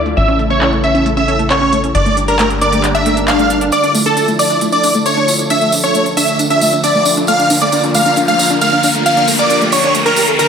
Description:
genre	uplifting trance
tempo	135 BPM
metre	4/4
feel	straight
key	D harmonic minor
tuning	A4 = 440 Hz
part	analog string pad	sustained chords	0.0-10.5 s	C#3 to Bb4	-19 LUFS	equal	ensemble chorus
part	wide unison pluck	arpeggios	0.0-10.5 s	D3 to A4	-19 LUFS	right 1 dB	wide subtle chorus, tape echo
part	tight sequencer bass	bass	0.0-3.7 s	G1 to D2	-19 LUFS	equal	none
part	techno drum kit	drums	0.1-10.5 s	handclaps, hi-hat	-20 LUFS	equal	none
part	big supersaw lead	melody	0.2-10.5 s	A4 to F5	-14 LUFS	equal	phaser, tape echo
part	swell and riser	sound effects	3.0-10.5 s	none	-21 LUFS	left 2 dB	none
part	plucky unison lead	second line	3.7-10.5 s	A4 to F5	-19 LUFS	equal	tape echo
part	tambourine	percussion	3.7-10.5 s	none	-22 LUFS	right 3 dB	none
room	moderate lush hall reverb, RT60 1.8 s, digital ambience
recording	high-pass filter, low-pass filter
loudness	-10 LUFS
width	side -7 dB against mid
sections	0.0-3.7 A section; 3.7-10.5 B section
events	filter sweep on synth pluck 0.0-3.7; swell 3.0-3.7; build-up 3.7-10.5; riser 3.7-10.5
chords	0.2 A; 1.9 Gm; 3.7 Dmadd9; 7.3 Bb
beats	| 0.17 0.61 1.06 1.50 | 1.95 2.39 2.84 3.28 | 3.73 4.17 4.62 5.06 | 5.50 5.95 6.39 6.84 | 7.28 7.73 8.17 8.62 | 9.06 9.50 9.95 10.39

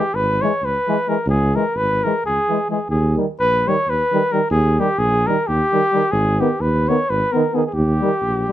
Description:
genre	balkan folk, Balkan brass band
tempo	260 BPM (eighths)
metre	7/8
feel	straight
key	Eb phrygian dominant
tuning	A4 = 440 Hz
part	warm flugelhorn	melody	0.0-8.5 s	G4 to Db5	-19 LUFS	equal	none
part	clear euphonium	accompaniment	0.0-8.5 s	G3 to Cb4	-23 LUFS	left 5 dB	none
part	mellow tuba	bass	0.1-8.5 s	Ab1 to Eb2	-20 LUFS	right 1 dB	none
part	warm trombone	accompaniment	0.4-8.1 s	Eb3 to Fb3	-23 LUFS	right 6 dB	none
room	light reverb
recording	close, detailed microphones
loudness	-16 LUFS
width	side -12 dB against mid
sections	0.0-8.5 A section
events	none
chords	0.0 Dbm; 2.9 Eb; 6.1 Abm; 7.7 Eb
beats	0.12 0.35 0.58 0.81 1.04 | 1.28 1.51 1.74 1.97 2.20 2.43 2.66 | 2.89 3.12 3.35 3.59 3.82 4.05 4.28 | 4.51 4.74 4.97 5.20 5.43 5.66 5.89 | 6.13 6.36 6.59 6.82 7.05 7.28 7.51 | 7.74 7.97 8.20 8.43

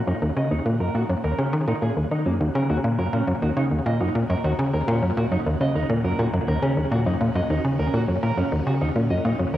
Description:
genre	ambient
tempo	103 BPM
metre	4/4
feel	straight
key	Eb minor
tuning	A4 = 440 Hz
part	phased string machine	sustained chords	0.0-9.6 s	Db3 to Eb4	-34 LUFS	equal	ensemble chorus, phaser, cassette tape
part	tight sequencer bass	riff	0.0-9.6 s	Eb2 to Eb3	-21 LUFS	equal	cassette tape, analog delay
part	analog drone	bass	3.7-9.6 s	Eb2	-40 LUFS	equal	none
part	wind-like tuned noise texture	texture	0.0-9.6 s	Gb5	-43 LUFS	right 2 dB	none
part	electric guitar at the edge of break-up	arpeggios	0.1-9.6 s	Bb3 to Eb5	-30 LUFS	moving between left 1 dB and right 5 dB	auto-pan, low-pass filter, cassette tape, analog delay
room	wet spring reverb, RT60 1.1 s, digital ambience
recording	home recording on cassette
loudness	-20 LUFS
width	side -13 dB against mid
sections	0.0-9.6 A section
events	fade-in on string machine 0.0-9.6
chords	0.0 Ebm7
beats	| 0.07 0.66 1.24 1.82 | 2.40 2.99 3.57 4.15 | 4.73 5.32 5.90 6.48 | 7.06 7.65 8.23 8.81 | 9.39

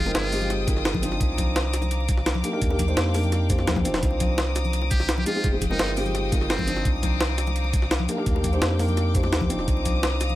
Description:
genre	liquid drum and bass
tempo	170 BPM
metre	4/4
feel	straight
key	C minor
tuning	A4 = 440 Hz
part	trumpet with metal mute	melody	0.0-0.5, 4.9-6.9 s	C4 to G4	-32 LUFS	left 1 dB	ping-pong delay
part	dark chamber string section	sustained chords	0.0-10.4 s	F5 to Eb6	-32 LUFS	left 4 dB	none
part	warm sub bass	bass	0.0-10.4 s	Eb1 to F2	-26 LUFS	equal	none
part	felt-muted upright piano	accompaniment	0.1-10.4 s	Ab3 to C5	-28 LUFS	equal	dub echo
part	jungle sampler-style drum kit	drums	0.1-10.4 s	hi-hat, shaker, snare drum, toms	-27 LUFS	equal	overdrive
part	bongos and congas	percussion	0.1-10.4 s	none	-33 LUFS	left 4 dB	none
part	electronic kick drum	drums	0.7-9.9 s	none	-26 LUFS	equal	none
room	little or no reverb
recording	none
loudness	-21 LUFS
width	side -15 dB against mid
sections	0.0-10.4 A section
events	drum fill 3.7-4.0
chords	0.0 Fm7; 1.2 Cm11; 2.4 Ebmaj7; 4.0 Cm11; 5.3 Fm7; 6.9 Cm11; 8.1 Ebmaj7; 9.7 Cm11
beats	0.14 0.50 0.85 | 1.20 1.56 1.91 2.26 | 2.62 2.97 3.32 3.67 | 4.03 4.38 4.73 5.09 | 5.44 5.79 6.14 6.50 | 6.85 7.20 7.56 7.91 | 8.26 8.62 8.97 9.32 | 9.68 10.03

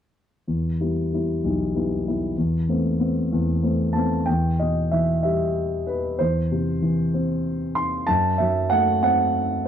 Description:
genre	classical, lyrical solo piano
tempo	63 BPM (dotted quarters)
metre	6/8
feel	rubato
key	E minor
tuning	A4 = 440 Hz
part	dark grand piano	solo	0.5-9.7 s	B1 to C6	-20 LUFS	equal	none
room	light reverb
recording	dark, warm production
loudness	-20 LUFS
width	side -9 dB against mid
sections	0.5-4.3 A section; 4.3-9.7 B section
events	none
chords	0.5 Em; 2.4 Amadd9/E; 4.3 Em; 6.2 C/E; 8.1 F#dim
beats	| 0.46 1.42 | 2.36 3.30 | 4.26 5.23 | 6.19 7.13 | 8.07 9.02

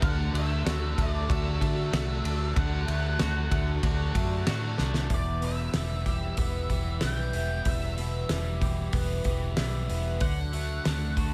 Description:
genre	rock, shoegaze and dream pop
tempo	94 BPM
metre	4/4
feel	straight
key	E minor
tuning	A4 = 440 Hz
part	octave-fuzz lead guitar	melody	0.0-11.1 s	D5 to G5	-39 LUFS	equal	distortion, slapback echo
part	string machine, violas	sustained chords	0.0-5.1 s	F#4 to A5	-44 LUFS	equal	ensemble chorus
part	picked twelve-string acoustic guitar	arpeggios	0.0-11.3 s	E3 to A4	-42 LUFS	equal	lush chorus, slapback echo
part	crunchy overdriven guitar	riff	0.0-11.3 s	E2 to F#4	-38 LUFS	equal	analog chorus
part	twangy electric guitar	riff	0.0-11.3 s	D3 to G4	-40 LUFS	equal	reverse reverb
part	vintage muted fingered electric bass	bass	0.0-11.3 s	E1 to D3	-32 LUFS	equal	none
part	loose indie drum kit	drums	0.0-11.3 s	hi-hat, kick drum, ride cymbal, snare drum	-32 LUFS	equal	none
room	studio reverb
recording	none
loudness	-28 LUFS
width	mono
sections	0.0-5.1 A section; 5.1-11.3 A section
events	drum fill 4.8-5.1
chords	0.0 D; 5.1 Em; 10.2 D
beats	| 0.01 0.65 1.29 1.92 | 2.56 3.20 3.83 4.47 | 5.11 5.75 6.38 7.02 | 7.66 8.30 8.94 9.57 | 10.21 10.85

